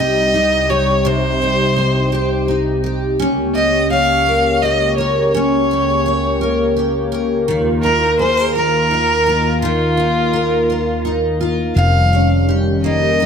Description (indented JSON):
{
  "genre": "pop",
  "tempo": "56 BPM (dotted quarters)",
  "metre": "6/8",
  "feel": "straight",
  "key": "unclear",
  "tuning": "A4 = 441 Hz",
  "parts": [
    { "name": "clear violin", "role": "melody", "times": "0.0-13.3 s", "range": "F4 to F5", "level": "-17 LUFS", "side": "left 1 dB", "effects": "none" },
    { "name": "picked steel-string acoustic guitar", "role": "accompaniment", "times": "0.0-13.3 s", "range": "F2 to Db5", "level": "-18 LUFS", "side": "equal", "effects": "double-tracked left and right" },
    { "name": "warm analog pad", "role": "sustained chords", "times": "0.0-13.3 s", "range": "C2 to Db5", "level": "-19 LUFS", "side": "equal", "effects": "chorus" },
    { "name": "vintage muted fingered electric bass", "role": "bass", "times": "11.8-13.3 s", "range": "F1", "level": "-15 LUFS", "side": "equal", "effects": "none" }
  ],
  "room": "moderate echo chamber reverb, RT60 1.6 s, studio reverb",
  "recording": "none",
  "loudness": "-13 LUFS",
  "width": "side -7 dB against mid",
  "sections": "0.0-11.8 A section; 11.8-13.3 B section",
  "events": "none",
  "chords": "0.0 Cm; 3.2 Gdim/Db; 7.5 Ebsus2; 11.8 Eb7/F"
}